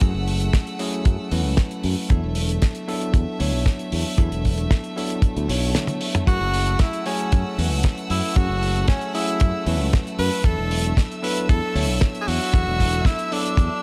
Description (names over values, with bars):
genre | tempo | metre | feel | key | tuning
nu-disco, nu disco | 115 BPM | 4/4 | straight | unclear | A4 = 439 Hz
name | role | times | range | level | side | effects
bell-like tine electric piano | accompaniment | 0.0-13.8 s | F#3 to C#5 | -30 LUFS | equal | low-pass filter
bright studio violin section | sustained chords | 0.0-13.8 s | A3 to E6 | -35 LUFS | equal | sidechain pumping
modern bright fingered electric bass | bass | 0.0-13.7 s | E1 to F#2 | -26 LUFS | equal | tube saturation
damped 70s drum kit | drums | 0.0-13.7 s | hi-hat, snare drum, toms | -30 LUFS | equal | none
kick drum | drums | 0.0-13.7 s | none | -20 LUFS | equal | none
breathy tenor saxophone | melody | 6.3-13.8 s | C#4 to B4 | -28 LUFS | equal | analog delay
room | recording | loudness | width
small room ambience | none | -22 LUFS | mono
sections
0.0-13.8 A section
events
drum fill 5.8-6.3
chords
0.0 F#m7; 2.1 E7sus4; 6.3 F#m7; 10.4 E7sus4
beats
| 0.01 0.54 1.06 1.58 | 2.10 2.62 3.15 3.67 | 4.19 4.71 5.23 5.75 | 6.28 6.80 7.32 7.84 | 8.36 8.88 9.41 9.93 | 10.45 10.97 11.49 12.02 | 12.54 13.06 13.58